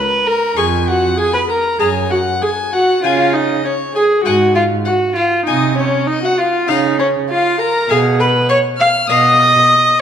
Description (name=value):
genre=quick classical-period movement for string quartet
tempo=99 BPM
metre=4/4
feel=rubato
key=unclear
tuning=A4 = 439 Hz
part: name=warm violin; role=second line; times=0.0-10.0 s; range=C#5 to E#6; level=-20 LUFS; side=left 5 dB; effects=none
part: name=warm viola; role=accompaniment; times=0.0-10.0 s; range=C#4 to E#5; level=-13 LUFS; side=equal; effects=none
part: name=warm violin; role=melody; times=0.6-9.4 s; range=E#5 to C#6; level=-22 LUFS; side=left 10 dB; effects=none
part: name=warm cello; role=bass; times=0.6-9.6 s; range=E#2 to C#3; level=-20 LUFS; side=right 4 dB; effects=none
room=moderate scoring stage reverb, RT60 1.5 s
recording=minimal, uncompressed stereo recording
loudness=-12 LUFS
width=side -8 dB against mid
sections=0.0-10.0 A section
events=none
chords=0.0 N.C.; 0.6 C#/E#; 1.8 F#; 3.0 C#5; 5.5 G#/B#; 6.7 C#; 7.9 B6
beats=| 0.57 1.18 1.80 2.42 | 3.03 3.65 4.26 4.87 | 5.47 6.08 6.68 7.28 | 7.89 8.49 9.09 9.69